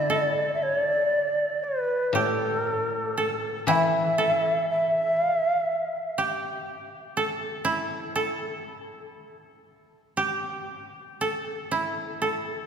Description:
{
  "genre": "japanese traditional, Japanese chamber music",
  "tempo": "59 BPM",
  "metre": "4/4",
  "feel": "rubato",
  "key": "A suspended pentatonic",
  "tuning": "A4 = 439 Hz",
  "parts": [
    { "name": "breathy mellow shakuhachi", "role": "melody", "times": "0.0-6.2 s", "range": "A4 to G5", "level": "-24 LUFS", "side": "equal", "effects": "none" },
    { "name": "koto", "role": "second line", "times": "0.0-12.7 s", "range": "E4 to A4", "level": "-28 LUFS", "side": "right 2 dB", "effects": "none" },
    { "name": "koto", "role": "accompaniment", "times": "0.0-6.7 s", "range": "A2 to E3", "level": "-31 LUFS", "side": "left 4 dB", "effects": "none" }
  ],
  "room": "wet church reverb, RT60 3.4 s",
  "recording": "recorded in a church or concert hall",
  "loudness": "-24 LUFS",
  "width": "side -7 dB against mid",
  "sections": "0.0-12.7 A section",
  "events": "none",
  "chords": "none"
}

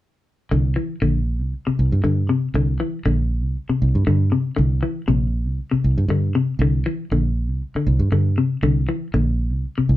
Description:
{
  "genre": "afrobeat",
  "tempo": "118 BPM",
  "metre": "4/4",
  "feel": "straight",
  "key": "C mixolydian",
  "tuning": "A4 = 440 Hz",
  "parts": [
    { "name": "semi-hollow electric guitar", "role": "arpeggios", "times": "0.5-10.0 s", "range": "C3 to E3", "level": "-21 LUFS", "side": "left 3 dB", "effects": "none" },
    { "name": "fingered electric bass", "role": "bass", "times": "0.5-10.0 s", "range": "Bb1 to G2", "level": "-19 LUFS", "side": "right 1 dB", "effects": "none" }
  ],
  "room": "moderate studio ambience, RT60 0.5 s",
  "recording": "band playing live in one room",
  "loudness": "-18 LUFS",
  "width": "side -15 dB against mid",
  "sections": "0.5-10.0 A section",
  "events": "none",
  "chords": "0.5 C7sus2"
}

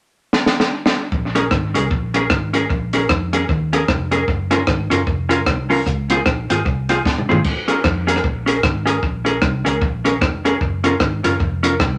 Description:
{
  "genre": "ska",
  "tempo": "152 BPM",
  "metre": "4/4",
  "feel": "swing 60% on 8ths",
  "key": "Bb minor",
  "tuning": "A4 = 441 Hz",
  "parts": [
    { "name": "compact cocktail drum kit", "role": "drums", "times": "0.3-11.9 s", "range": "crash cymbal, hi-hat, kick drum, rim click, snare drum, toms", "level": "-22 LUFS", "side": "equal", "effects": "analog delay" },
    { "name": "vintage muted fingered electric bass", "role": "bass", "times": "1.1-12.0 s", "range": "F1 to F2", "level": "-26 LUFS", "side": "equal", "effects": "none" },
    { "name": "vintage hollow-body jazz guitar", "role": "accompaniment", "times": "1.4-11.7 s", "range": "C4 to Bb4", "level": "-21 LUFS", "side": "equal", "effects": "analog delay" }
  ],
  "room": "wet studio reverb, RT60 0.6 s",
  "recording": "none",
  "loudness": "-18 LUFS",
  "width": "mono",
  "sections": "0.0-1.1 A section; 1.1-12.0 B section",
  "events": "drum fill 0.3-1.1, 7.1-7.5",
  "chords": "0.0 N.C.; 1.1 Bbm7; 4.3 Gbmaj7; 5.9 Dbmaj7; 7.5 Bbm7; 10.6 Gbmaj7"
}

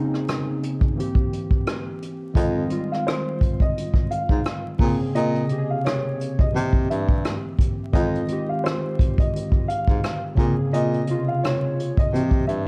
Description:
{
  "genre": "lo-fi hip hop",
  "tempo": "86 BPM",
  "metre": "4/4",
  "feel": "swing 59% on 16ths",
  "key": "F minor",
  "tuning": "A4 = 439 Hz",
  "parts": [
    { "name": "warbly lo-fi synth keys", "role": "accompaniment", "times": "0.0-12.7 s", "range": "C3 to Ab4", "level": "-28 LUFS", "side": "equal", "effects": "chorus, low-pass filter" },
    { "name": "vintage brush drum kit", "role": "drums", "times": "0.1-12.7 s", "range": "hi-hat, kick drum, rim click", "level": "-24 LUFS", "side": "equal", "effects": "none" },
    { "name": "warm upright piano", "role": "melody", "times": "2.4-12.7 s", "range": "C5 to F5", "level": "-31 LUFS", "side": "equal", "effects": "low-pass filter, plate reverb" },
    { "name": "breathy baritone saxophone", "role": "bass", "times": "2.4-12.7 s", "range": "F2 to C3", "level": "-27 LUFS", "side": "equal", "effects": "none" }
  ],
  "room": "moderate studio reverb, RT60 0.5 s",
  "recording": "dark, warm production, vinyl crackle",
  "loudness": "-23 LUFS",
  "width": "mono",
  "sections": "0.0-12.7 A section",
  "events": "break 0.0-2.4",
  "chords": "0.0 Bbm9; 1.0 C7; 2.4 Fm7; 4.8 Bbm9; 6.5 C7; 7.9 Fm7; 10.4 Bbm9; 12.1 C7"
}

